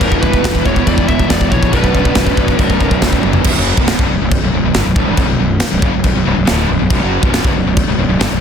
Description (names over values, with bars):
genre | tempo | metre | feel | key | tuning
heavy metal | 139 BPM | 4/4 | straight | B minor | A4 = 440 Hz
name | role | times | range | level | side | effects
high-gain lead guitar | melody | 0.0-3.0 s | A#4 to E5 | -20 LUFS | equal | distortion, digital delay
clear studio string section | sustained chords | 0.0-3.4, 6.9-8.4 s | E3 to D5 | -30 LUFS | left 1 dB | none
distorted electric guitar | riff | 0.0-8.4 s | B1 to F#3 | -20 LUFS | right 12 dB | distortion
raw garage guitar | riff | 0.0-8.4 s | B1 to E4 | -20 LUFS | equal | overdrive
scooped high-gain guitar | riff | 0.0-8.4 s | B1 to F#3 | -20 LUFS | left 12 dB | distortion
fuzz fingered electric bass | bass | 0.0-8.4 s | B0 to A#1 | -17 LUFS | equal | overdrive
modern studio drum kit | drums | 0.0-8.3 s | china cymbal, crash cymbal, kick drum, snare drum, toms | -16 LUFS | equal | none
room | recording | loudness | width
studio reverb | dense, heavily limited modern master | -11 LUFS | side -7 dB against mid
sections
0.0-3.5 A section; 3.5-8.4 B section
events
drum fill 3.2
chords
0.0 Em; 1.7 Bm